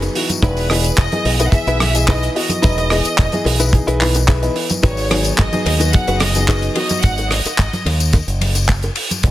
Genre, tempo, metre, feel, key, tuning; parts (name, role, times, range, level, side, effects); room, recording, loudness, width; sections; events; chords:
nu-disco, nu disco; 109 BPM; 4/4; straight; G# minor; A4 = 440 Hz
dark grand piano; accompaniment; 0.0-7.3 s; E3 to E5; -23 LUFS; left 1 dB
direct-recorded clean electric guitar; riff; 0.0-6.8 s; D#4 to B4; -23 LUFS; left 2 dB; analog chorus
fingered electric bass with an envelope filter; bass; 0.0-9.3 s; E1 to D#2; -18 LUFS; equal; tube saturation
damped 70s drum kit; drums; 0.0-9.3 s; handclaps, hi-hat, ride cymbal, rim click, tambourine; -20 LUFS; equal
bongos, cabasa and congas; percussion; 0.0-9.3 s; -26 LUFS; right 1 dB
clear studio violin section; melody; 0.4-8.1 s; B4 to F#5; -23 LUFS; equal; digital delay
kick drum; drums; 0.4-9.3 s; -14 LUFS; equal
small room ambience; -14 LUFS; side -14 dB against mid
0.0-9.3 A section
0.4 Emaj7; 4.8 G#m7